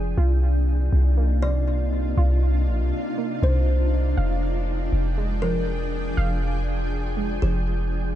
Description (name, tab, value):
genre	hip hop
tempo	120 BPM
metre	4/4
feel	half-time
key	F dorian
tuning	A4 = 438 Hz
part	kalimba	melody	0.0-8.1 s	Ab4 to D5	-34 LUFS	left 1 dB	low-pass filter, tape echo
part	shimmering ambient pad	sustained chords	0.0-8.1 s	C3 to G5	-29 LUFS	equal	chorus, built-in reverb
part	warbly dusty pluck	arpeggios	0.0-8.2 s	C3 to F5	-33 LUFS	right 4 dB	chorus, low-pass filter, tape echo
part	warm 808-style bass	bass	0.0-8.1 s	F1 to C2	-21 LUFS	equal	none
room	little or no reverb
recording	dark, warm production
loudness	-20 LUFS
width	side -12 dB against mid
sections	0.0-8.2 A section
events	none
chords	0.2 Cm11; 4.2 Fm69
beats	| 0.18 0.68 1.18 1.68 | 2.18 2.68 3.18 3.68 | 4.18 4.68 5.18 5.68 | 6.18 6.68 7.18 7.68